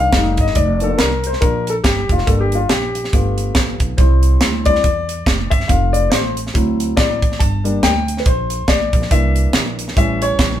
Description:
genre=uptempo gospel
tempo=140 BPM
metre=4/4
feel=swing 59% on 8ths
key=unclear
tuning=A4 = 443 Hz
part: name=warm grand piano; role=accompaniment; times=0.0-10.6 s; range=Eb3 to A5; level=-19 LUFS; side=left 3 dB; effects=none
part: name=upright bass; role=bass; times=0.0-10.6 s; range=F1 to E2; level=-19 LUFS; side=right 1 dB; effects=none
part: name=crisp fusion drum kit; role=drums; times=0.1-10.5 s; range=hi-hat, kick drum, snare drum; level=-17 LUFS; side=right 1 dB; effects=none
room=light reverb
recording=band playing live in one room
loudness=-14 LUFS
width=side -11 dB against mid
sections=0.0-10.6 A section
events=grand piano solo 0.0-10.6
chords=0.1 F9; 0.6 Bb/F; 2.3 Gm; 3.1 G7; 4.0 C; 5.7 F; 6.6 D7; 7.4 Gm; 9.1 C7; 10.0 A7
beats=0.13 | 0.56 0.99 1.42 1.85 | 2.27 2.70 3.13 3.56 | 3.99 4.42 4.84 5.27 | 5.70 6.13 6.55 6.98 | 7.41 7.83 8.26 8.69 | 9.11 9.54 9.97 10.39

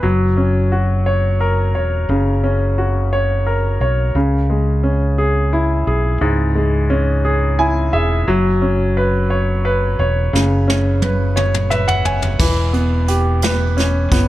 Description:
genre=six-eight pop ballad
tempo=58 BPM (dotted quarters)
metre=6/8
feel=straight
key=unclear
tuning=A4 = 440 Hz
part: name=bright concert grand piano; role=accompaniment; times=0.0-14.3 s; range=G#2 to G#5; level=-18 LUFS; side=equal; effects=none
part: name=fingered electric bass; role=bass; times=0.0-14.3 s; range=E1 to C#2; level=-17 LUFS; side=equal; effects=none
part: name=vintage brush drum kit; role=drums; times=10.4-14.3 s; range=crash cymbal, hi-hat, kick drum, snare drum, toms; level=-20 LUFS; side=equal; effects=none
room=light reverb, small room ambience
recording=none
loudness=-14 LUFS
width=side -15 dB against mid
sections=0.0-12.4 A section; 12.4-14.3 B section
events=grand piano fill 7.2-8.3, 11.4-12.4; drum fill 10.3-12.4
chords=0.0 F#; 4.2 C#m; 8.3 F#sus4; 12.4 Em6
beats=| 0.03 1.06 | 2.09 3.12 | 4.15 5.18 | 6.21 7.24 | 8.28 9.31 | 10.34 11.37 | 12.40 13.43

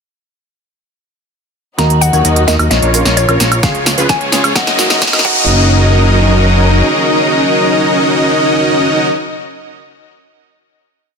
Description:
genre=EDM, festival progressive house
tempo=130 BPM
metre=4/4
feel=straight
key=F# major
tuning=A4 = 440 Hz
part: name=mallet-like synth pluck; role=melody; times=1.8-9.1 s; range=C#5 to A#5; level=-18 LUFS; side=left 2 dB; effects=chorus, phaser, ping-pong delay
part: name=dark concert grand piano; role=accompaniment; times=1.8-9.1 s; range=G#3 to A#4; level=-22 LUFS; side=right 2 dB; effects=sidechain pumping, ping-pong delay
part: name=warm symphonic string section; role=sustained chords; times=1.8-9.1 s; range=F#3 to A#4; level=-20 LUFS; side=left 2 dB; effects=sidechain pumping
part: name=wide unison lead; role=arpeggios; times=1.8-9.1 s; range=B4 to D#5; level=-19 LUFS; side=left 1 dB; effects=sidechain pumping, ping-pong delay
part: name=dense compressed supersaw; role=riff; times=1.8-9.1 s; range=C#4 to D#5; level=-14 LUFS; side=equal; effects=sidechain pumping, low-pass filter, ping-pong delay
part: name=fat analog bass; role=bass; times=1.8-6.8 s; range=F#1 to D#2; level=-13 LUFS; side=equal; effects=sidechain pumping
part: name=big-room dance drum kit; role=drums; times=1.8-5.3 s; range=cabasa, crash cymbal, hi-hat, snare drum, woodblock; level=-14 LUFS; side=right 1 dB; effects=none
part: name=riser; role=sound effects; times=3.2-5.5 s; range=none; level=-18 LUFS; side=equal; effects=none
part: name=electronic kick drum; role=drums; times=3.6-5.3 s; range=none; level=-20 LUFS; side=equal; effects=none
room=light reverb, digital ambience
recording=dense, heavily limited modern master, high-pass filter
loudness=-9 LUFS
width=side -5 dB against mid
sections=1.8-5.5 build; 5.5-9.2 final hit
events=build-up 1.8-5.5; drum fill 1.8-5.5; filter sweep on supersaw synth 1.8-5.5; filter sweep 1.8-5.5; riser 3.2-5.5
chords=1.8 D#m; 2.7 A#m; 3.6 C#; 4.6 F#6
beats=| 1.79 2.25 2.71 3.17 | 3.63 4.09 4.56 5.02 | 5.48 5.94 6.40 6.86 | 7.33 7.79 8.25 8.71

